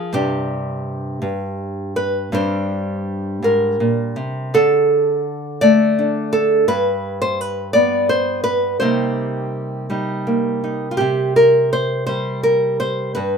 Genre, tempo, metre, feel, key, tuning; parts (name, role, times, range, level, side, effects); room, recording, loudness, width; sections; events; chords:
folk, solo fingerstyle acoustic guitar; 55 BPM (dotted quarters); 6/8; straight; C minor; A4 = 440 Hz
nylon-string guitar; solo; 0.0-13.4 s; G2 to D5; -16 LUFS; equal
moderate small room reverb, RT60 0.5 s; minimal, uncompressed stereo recording; -16 LUFS; side -6 dB against mid
0.0-11.0 A section; 11.0-13.4 B section
0.1 Gsus4; 1.2 N.C.; 2.3 Gsus4; 4.5 D5; 6.7 G; 8.8 Cm7; 11.0 C5